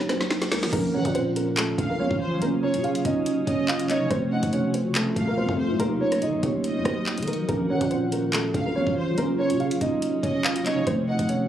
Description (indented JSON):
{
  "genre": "hip hop, drill",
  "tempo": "142 BPM",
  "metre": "4/4",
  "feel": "half-time",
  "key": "Bb harmonic minor",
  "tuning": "A4 = 440 Hz",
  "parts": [
    { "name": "dark concert grand piano", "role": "melody", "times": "0.0-11.5 s", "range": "A3 to F5", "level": "-28 LUFS", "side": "right 1 dB", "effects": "tape echo" },
    { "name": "mellow tine electric piano", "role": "accompaniment", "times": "0.0-11.5 s", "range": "F3 to Gb4", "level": "-27 LUFS", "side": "right 2 dB", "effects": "medium stereo tremolo" },
    { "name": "growling 808-style bass", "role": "bass", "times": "0.0-11.5 s", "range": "Eb1 to F3", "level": "-30 LUFS", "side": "left 1 dB", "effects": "none" },
    { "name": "reverse cymbal", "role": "sound effects", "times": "0.2-0.7 s", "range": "none", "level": "-39 LUFS", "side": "right 3 dB", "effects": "none" },
    { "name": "drill drum kit", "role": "drums", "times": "0.1-11.4 s", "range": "crash cymbal, handclaps, hi-hat, kick drum, rim click, snare drum", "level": "-28 LUFS", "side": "equal", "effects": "overdrive" },
    { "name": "granular cloud pad", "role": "sustained chords", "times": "1.5-11.5 s", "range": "C3 to Gb4", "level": "-32 LUFS", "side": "equal", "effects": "built-in reverb" },
    { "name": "warm studio violin section", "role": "second line", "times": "0.9-11.3 s", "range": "C5 to Gb5", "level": "-34 LUFS", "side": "equal", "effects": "tape echo" }
  ],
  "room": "light reverb",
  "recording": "recorded on a phone in the room, club reverb, compression",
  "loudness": "-22 LUFS",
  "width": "side -10 dB against mid",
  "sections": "0.7-11.5 A section",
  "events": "drum fill 0.0-0.7; reverse cymbal 0.2-0.7",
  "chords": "0.0 Ebm; 0.7 Bbm; 2.4 Gb; 4.1 F; 5.8 Ebm; 7.5 Bbm; 9.2 Gb; 10.9 F"
}